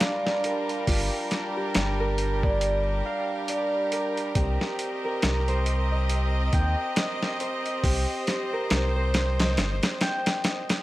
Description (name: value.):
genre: trip hop.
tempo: 69 BPM.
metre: 4/4.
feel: swing 58% on 16ths.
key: unclear.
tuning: A4 = 440 Hz.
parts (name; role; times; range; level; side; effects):
clear chamber violin section; sustained chords; 0.0-10.8 s; G3 to Eb5; -31 LUFS; equal; none.
concert harp; arpeggios; 0.0-10.8 s; F4 to G5; -30 LUFS; right 1 dB; digital delay.
boom bap sampler-style drum kit; drums; 0.0-10.8 s; hi-hat, kick drum, snare drum; -26 LUFS; equal; none.
round analog bass; bass; 0.9-9.8 s; G1 to Eb2; -26 LUFS; equal; none.
room: light reverb, small room ambience.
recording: vinyl crackle.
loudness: -23 LUFS.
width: side -16 dB against mid.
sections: 0.0-10.8 A section.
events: none.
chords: 0.0 Gm7; 4.4 Cm7.